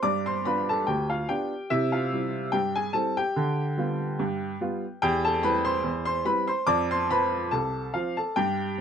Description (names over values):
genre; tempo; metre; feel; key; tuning
ragtime piano; 72 BPM; 2/4; swing 55% on 16ths; C major; A4 = 440 Hz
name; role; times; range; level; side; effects
clear upright piano; solo; 0.0-8.8 s; C2 to D6; -24 LUFS; equal; none
room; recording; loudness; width
moderate studio reverb, RT60 0.6 s; close, detailed microphones; -24 LUFS; side -7 dB against mid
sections
0.0-8.8 A section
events
none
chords
0.0 G7; 1.7 C; 3.4 G7/D; 5.0 C/E; 6.7 F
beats
| 0.03 0.86 | 1.70 2.53 | 3.36 4.19 | 5.02 5.85 | 6.68 7.51 | 8.35